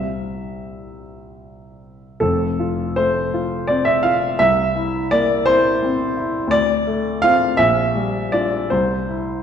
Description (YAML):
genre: classical, romantic character piece for solo piano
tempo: 55 BPM (dotted quarters)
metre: 6/8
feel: uneven beats, rubato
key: F major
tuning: A4 = 439 Hz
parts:
  - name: warm baby grand piano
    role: solo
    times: 0.0-9.4 s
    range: F1 to F5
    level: -17 LUFS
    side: equal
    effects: none
room: wet scoring stage reverb, RT60 1.8 s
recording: dark, warm production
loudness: -16 LUFS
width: side -8 dB against mid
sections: 0.0-2.2 A section; 2.2-9.4 B section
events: none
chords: 0.0 C; 2.2 F; 4.4 C7; 6.5 Dm7; 7.6 Gm7/Bb; 8.7 C